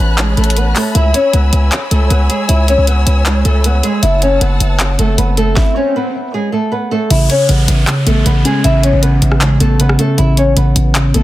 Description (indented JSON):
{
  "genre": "hip hop, trap",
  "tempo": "156 BPM",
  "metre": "4/4",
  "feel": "half-time",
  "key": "unclear",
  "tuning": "A4 = 437 Hz",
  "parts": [
    { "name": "flamenco guitar", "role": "melody", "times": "0.0-11.2 s", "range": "G#3 to E5", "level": "-16 LUFS", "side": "equal", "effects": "tape echo" },
    { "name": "warm studio string section", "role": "sustained chords", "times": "0.0-5.6 s", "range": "C#5 to F#6", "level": "-21 LUFS", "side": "left 2 dB", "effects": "none" },
    { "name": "distorted 808-style bass", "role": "bass", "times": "0.0-11.2 s", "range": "F#1 to C#2", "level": "-12 LUFS", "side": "equal", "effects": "distortion" },
    { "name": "trap drum kit", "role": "drums", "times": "0.2-11.2 s", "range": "handclaps, hi-hat, kick drum, rim click, snare drum", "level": "-17 LUFS", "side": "equal", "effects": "none" },
    { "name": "swell and downlifter", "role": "sound effects", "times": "5.0-10.2 s", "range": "none", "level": "-24 LUFS", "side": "equal", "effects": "none" },
    { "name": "muted felt-like synth keys", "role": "accompaniment", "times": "7.1-11.2 s", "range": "C#3 to C#4", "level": "-13 LUFS", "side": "equal", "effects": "chorus" }
  ],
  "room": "little or no reverb",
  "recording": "dense, heavily limited modern master",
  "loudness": "-10 LUFS",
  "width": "side -15 dB against mid",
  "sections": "0.0-7.1 A section; 7.1-11.2 B section",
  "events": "swell 5.0-7.1; stop 5.6-7.1",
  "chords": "0.0 Aadd9; 1.0 C#m7; 4.0 F#m7; 7.1 Aadd9"
}